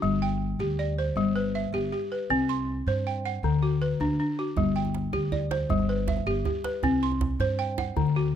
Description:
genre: west african traditional, West African string and xylophone music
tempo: 106 BPM (dotted quarters)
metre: 12/8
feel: straight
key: G major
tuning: A4 = 442 Hz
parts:
  - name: balafon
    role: arpeggios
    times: 0.0-8.4 s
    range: D3 to C6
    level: -26 LUFS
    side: left 2 dB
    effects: none
  - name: upright bass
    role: bass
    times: 0.0-8.4 s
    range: G1 to G2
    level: -30 LUFS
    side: right 1 dB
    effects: none
  - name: djembe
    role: percussion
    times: 4.6-8.2 s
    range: none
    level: -32 LUFS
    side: right 6 dB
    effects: none
room: light reverb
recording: close, detailed microphones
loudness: -24 LUFS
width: side -9 dB against mid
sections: 0.0-8.4 A section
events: none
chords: 0.0 G; 2.3 C5; 3.4 D; 4.6 G; 6.8 C5

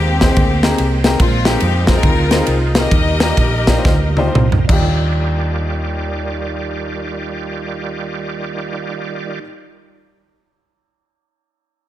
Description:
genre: uptempo gospel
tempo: 109-145 BPM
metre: 4/4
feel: swing 64% on 8ths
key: Eb major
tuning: A4 = 440 Hz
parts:
  - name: bright studio string section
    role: melody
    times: 0.0-4.3 s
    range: Ab3 to Eb5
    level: -20 LUFS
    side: left 2 dB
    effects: none
  - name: clear upright piano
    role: accompaniment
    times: 0.0-9.4 s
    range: Eb2 to C5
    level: -23 LUFS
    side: left 2 dB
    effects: none
  - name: bright tonewheel organ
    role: sustained chords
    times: 0.0-9.4 s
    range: Eb3 to D5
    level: -26 LUFS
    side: right 4 dB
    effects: slow rotary speaker, overdrive, chorus vibrato
  - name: hollow-body short-scale fingered electric bass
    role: bass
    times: 0.0-9.4 s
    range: Bb1 to F2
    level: -18 LUFS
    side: equal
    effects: none
  - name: modern studio drum kit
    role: drums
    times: 0.2-4.8 s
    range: crash cymbal, kick drum, ride cymbal, snare drum, toms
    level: -16 LUFS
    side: equal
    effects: none
room: light reverb, small room ambience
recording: none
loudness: -14 LUFS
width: side -13 dB against mid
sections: 0.0-4.9 A section; 4.9-9.3 B section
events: slowing down 1.2-4.9; drum fill 3.9-4.9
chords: 0.0 Abmaj9; 1.2 Bb9sus4; 2.9 Ebmaj9

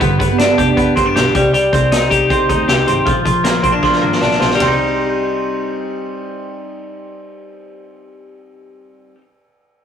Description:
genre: jangly indie pop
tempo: 156 BPM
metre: 4/4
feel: straight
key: C minor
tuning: A4 = 440 Hz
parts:
  - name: picked steel-string acoustic guitar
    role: accompaniment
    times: 0.0-1.6 s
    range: G2 to G4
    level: -18 LUFS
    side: right 7 dB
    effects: none
  - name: twelve-string electric guitar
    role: arpeggios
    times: 0.0-9.2 s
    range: F3 to G4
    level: -15 LUFS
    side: left 1 dB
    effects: spring reverb
  - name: muted double bass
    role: bass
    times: 0.0-8.4 s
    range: F1 to D2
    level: -21 LUFS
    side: left 1 dB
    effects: none
  - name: vintage drum kit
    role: drums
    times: 0.0-4.7 s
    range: hi-hat, kick drum, ride cymbal, snare drum, toms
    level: -20 LUFS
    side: equal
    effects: none
room: moderate studio reverb, RT60 0.6 s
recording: rough rehearsal-room recording, warm saturation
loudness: -12 LUFS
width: side -8 dB against mid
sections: 0.0-4.6 A section; 4.6-7.7 B section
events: drum fill 3.8-4.6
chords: 0.0 G; 1.3 Cm; 3.1 Bb; 4.6 Cm

